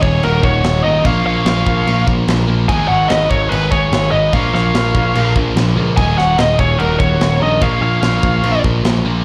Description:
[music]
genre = hard rock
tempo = 146 BPM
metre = 4/4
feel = straight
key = unclear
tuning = A4 = 439 Hz
[part]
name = bluesy overdriven lead guitar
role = melody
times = 0.0-8.6 s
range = Bb4 to Ab5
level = -19 LUFS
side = equal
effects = distortion, slapback echo, plate reverb
[part]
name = octave-fuzz lead guitar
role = second line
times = 0.0-8.6 s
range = Gb4 to Eb5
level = -28 LUFS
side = equal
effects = distortion, plate reverb, slapback echo
[part]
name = sludgy distorted guitar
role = riff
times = 0.0-9.2 s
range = Eb2 to Bb3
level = -22 LUFS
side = equal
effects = overdrive, slapback echo
[part]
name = tight distorted guitar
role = riff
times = 0.0-9.2 s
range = Eb2 to Bb3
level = -27 LUFS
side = equal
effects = distortion, slapback echo
[part]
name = modern bright picked electric bass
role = bass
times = 0.0-9.2 s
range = Eb1 to Db2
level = -19 LUFS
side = equal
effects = none
[part]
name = tight metal drum kit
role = drums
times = 0.0-8.9 s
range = crash cymbal, kick drum, snare drum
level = -22 LUFS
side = equal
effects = none
[sound]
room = light reverb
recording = live gig heard through the venue's PA, club reverb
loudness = -14 LUFS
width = mono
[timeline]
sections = 0.0-9.2 A section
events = none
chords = 0.0 Ebm; 1.0 Bbm; 2.7 Ab5; 4.3 Bbm; 6.0 Ebm; 7.6 Bbm

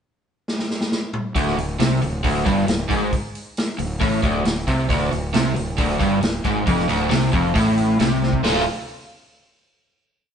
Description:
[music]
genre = classic rock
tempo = 135 BPM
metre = 4/4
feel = straight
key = D minor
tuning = A4 = 438 Hz
[part]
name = vintage drum kit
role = drums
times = 0.5-8.6 s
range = hi-hat, kick drum, snare drum, toms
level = -24 LUFS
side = equal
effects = none
[part]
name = crunchy overdriven guitar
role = riff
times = 1.4-8.6 s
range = D2 to F4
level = -19 LUFS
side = equal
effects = none
[part]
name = fuzz fingered electric bass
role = bass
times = 1.4-8.7 s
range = D1 to C2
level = -27 LUFS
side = equal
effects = overdrive
[sound]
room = moderate stone room reverb, RT60 1.2 s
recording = band playing live in one room, nothing above 10.3 kHz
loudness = -18 LUFS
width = side -8 dB against mid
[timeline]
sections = 0.0-1.3 pickup bar; 1.3-8.4 riff; 8.4-10.2 final chord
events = drum fill 0.5-1.3, 8.2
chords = 0.0 N.C.; 1.3 D5; 8.4 Dm

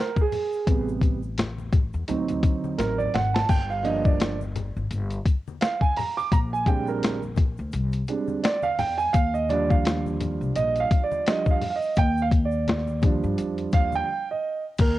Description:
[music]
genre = hip hop, jazz-hop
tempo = 85 BPM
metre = 4/4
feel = swing 58% on 16ths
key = Eb major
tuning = A4 = 440 Hz
[part]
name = dark baby grand piano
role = accompaniment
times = 0.0-15.0 s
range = C3 to D6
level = -25 LUFS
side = right 4 dB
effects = cassette tape
[part]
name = boom bap sampler-style drum kit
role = drums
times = 0.2-15.0 s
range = crash cymbal, hi-hat, kick drum, snare drum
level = -22 LUFS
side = left 2 dB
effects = cassette tape
[part]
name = congas and egg shaker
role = percussion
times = 0.2-15.0 s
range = none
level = -37 LUFS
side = left 8 dB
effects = none
[part]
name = upright bass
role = bass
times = 0.7-15.0 s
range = G1 to D3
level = -28 LUFS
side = left 1 dB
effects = none
[sound]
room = light reverb, small room ambience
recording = home recording on cassette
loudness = -22 LUFS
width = side -15 dB against mid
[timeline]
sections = 0.0-14.8 A section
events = grand piano solo 0.0-14.8; drum fill 2.8-3.5; break 14.1-14.8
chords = 0.0 Gbadd9 (rootless); 0.7 Am7; 2.1 D7b9; 3.5 Gm7; 6.3 Bb13; 9.1 Ebmaj9

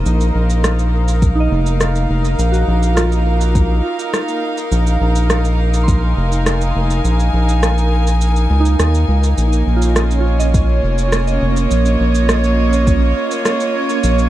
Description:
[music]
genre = ambient dub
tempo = 103 BPM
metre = 4/4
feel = straight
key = unclear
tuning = A4 = 440 Hz
[part]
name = rich chamber string section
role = sustained chords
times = 0.0-14.3 s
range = Bb3 to Ab5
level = -20 LUFS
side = right 1 dB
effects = none
[part]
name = round analog bass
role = bass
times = 0.0-14.3 s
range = F1 to Eb2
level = -14 LUFS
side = equal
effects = none
[part]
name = bubbling stepped-filter texture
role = texture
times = 0.0-14.3 s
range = Bb3 to Db5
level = -26 LUFS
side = right 1 dB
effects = chorus, built-in reverb
[part]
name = electronic shaker and rim click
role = drums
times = 0.1-14.3 s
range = none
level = -21 LUFS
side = right 1 dB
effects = none
[part]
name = electronic kick drum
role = drums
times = 1.2-6.0, 10.5-13.0 s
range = none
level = -16 LUFS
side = equal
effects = none
[part]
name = soft synth bell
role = arpeggios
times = 1.4-14.3 s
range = Eb4 to C6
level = -25 LUFS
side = right 4 dB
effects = chorus, tape echo
[sound]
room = light reverb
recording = vinyl crackle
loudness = -13 LUFS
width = side -14 dB against mid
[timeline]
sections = 0.0-14.3 A section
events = kick drops out 8.2-9.4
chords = 0.1 Ebm; 9.4 Bbm11

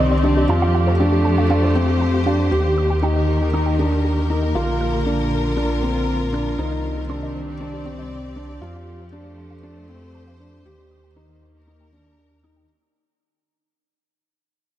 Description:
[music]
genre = piano and strings electronica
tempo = 118 BPM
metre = 4/4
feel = straight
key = unclear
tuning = A4 = 437 Hz
[part]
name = rich studio string section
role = sustained chords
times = 0.0-12.7 s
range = D3 to D5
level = -24 LUFS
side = equal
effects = none
[part]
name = felt-muted upright piano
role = riff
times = 0.0-12.6 s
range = C4 to G4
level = -23 LUFS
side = equal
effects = digital delay
[part]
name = dark detuned saw bass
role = bass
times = 0.0-12.7 s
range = Bb1 to F2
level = -22 LUFS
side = equal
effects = none
[part]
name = warbly dusty pluck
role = arpeggios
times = 0.1-12.6 s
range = G4 to F6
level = -28 LUFS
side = right 2 dB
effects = chorus, digital delay
[sound]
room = moderate huge ambient reverb, RT60 3.7 s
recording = dark, warm production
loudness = -17 LUFS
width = side -12 dB against mid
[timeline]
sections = 0.0-12.7 A section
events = fade-out 0.0-12.7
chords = 0.5 Fadd9; 2.5 Eb; 4.6 Bb; 6.6 Cmadd9; 8.6 Fadd9; 10.7 Eb

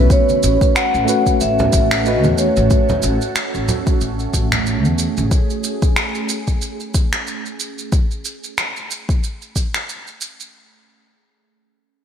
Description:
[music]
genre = sunset chillout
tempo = 92 BPM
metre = 4/4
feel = swing 56% on 16ths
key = A major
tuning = A4 = 440 Hz
[part]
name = tine electric piano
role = accompaniment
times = 0.0-3.0 s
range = G#3 to E5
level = -21 LUFS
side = right 1 dB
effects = overdrive, medium stereo tremolo, auto-pan, digital delay
[part]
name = ethereal airy pad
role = sustained chords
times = 0.0-7.9 s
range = A3 to G#4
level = -24 LUFS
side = right 3 dB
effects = ensemble chorus, built-in reverb, phaser
[part]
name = upright bass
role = bass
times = 0.0-5.3 s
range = A1 to E2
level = -19 LUFS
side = left 1 dB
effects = none
[part]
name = vibraphone with soft mallets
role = melody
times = 0.1-3.0 s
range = C#5 to F#5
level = -19 LUFS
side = left 1 dB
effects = ping-pong delay
[part]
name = electronic kick drum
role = drums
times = 0.1-9.7 s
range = none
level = -17 LUFS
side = left 1 dB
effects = none
[part]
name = electronic shaker and finger snaps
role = drums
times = 0.1-10.5 s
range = none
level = -23 LUFS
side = right 1 dB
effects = gated reverb
[part]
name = congas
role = percussion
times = 0.3-5.3 s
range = none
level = -25 LUFS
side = right 2 dB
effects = none
[sound]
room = light reverb, digital ambience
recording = bright 1980s-style digital production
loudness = -15 LUFS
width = side -8 dB against mid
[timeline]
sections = 0.1-10.5 A section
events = filter sweep on ambient pad 0.1-7.9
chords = 0.1 A69

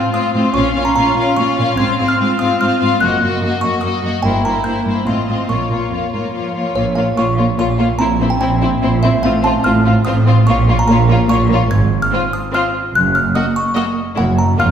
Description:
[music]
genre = cinematic, playful, whimsical film cue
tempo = 146 BPM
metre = 3/4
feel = straight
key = Bb minor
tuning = A4 = 440 Hz
[part]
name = music box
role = melody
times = 0.0-14.7 s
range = Db5 to Ab6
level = -19 LUFS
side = right 1 dB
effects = none
[part]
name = rich studio violin section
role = melody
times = 0.0-14.7 s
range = C5 to F5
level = -26 LUFS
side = left 4 dB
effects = none
[part]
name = rich studio violin section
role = second line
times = 0.0-14.7 s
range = E4 to Gb4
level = -21 LUFS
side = left 4 dB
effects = none
[part]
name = clear studio viola section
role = accompaniment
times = 0.0-14.7 s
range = Bb3 to Db4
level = -20 LUFS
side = equal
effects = none
[part]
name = rich studio cello section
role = bass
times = 0.1-14.7 s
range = F2 to F3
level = -19 LUFS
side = right 2 dB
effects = none
[part]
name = clear studio double bass section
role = bass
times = 0.5-14.7 s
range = F1 to Bb1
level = -19 LUFS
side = right 2 dB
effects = none
[sound]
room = wet scoring stage reverb, RT60 1.6 s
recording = heard from further back in the room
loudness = -13 LUFS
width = side -8 dB against mid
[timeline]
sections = 0.0-6.8 A section; 6.8-14.7 A section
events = none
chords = 0.0 F/A; 0.5 Bbm; 1.8 Fm/Ab; 3.0 Ebm/Gb; 4.2 C7/G; 5.1 F7/A; 5.5 Bbm; 8.0 C7/Bb; 9.2 F/A; 10.5 Bbm; 11.7 Fm/Ab; 12.9 Ebm/Gb; 14.2 Gb

